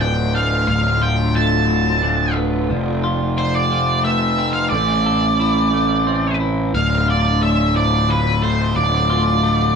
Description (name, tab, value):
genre	rock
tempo	89 BPM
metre	3/4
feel	straight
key	D dorian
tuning	A4 = 440 Hz
part	octave-fuzz lead guitar	melody	0.0-9.8 s	B4 to A5	-19 LUFS	right 1 dB	distortion
part	muted studio string section	sustained chords	0.0-9.8 s	C3 to F4	-28 LUFS	equal	none
part	twelve-string electric guitar	arpeggios	0.0-9.8 s	D2 to A4	-23 LUFS	left 5 dB	none
part	vibraphone with soft mallets	arpeggios	0.0-9.8 s	A4 to B5	-29 LUFS	right 6 dB	none
part	fuzz picked electric bass	bass	0.0-9.8 s	D1 to A1	-19 LUFS	equal	overdrive
room	moderate studio ambience, RT60 0.5 s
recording	band playing live in one room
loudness	-15 LUFS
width	side -6 dB against mid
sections	0.0-9.8 A section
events	none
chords	0.0 Dm; 2.7 F; 4.7 Am; 6.7 Dm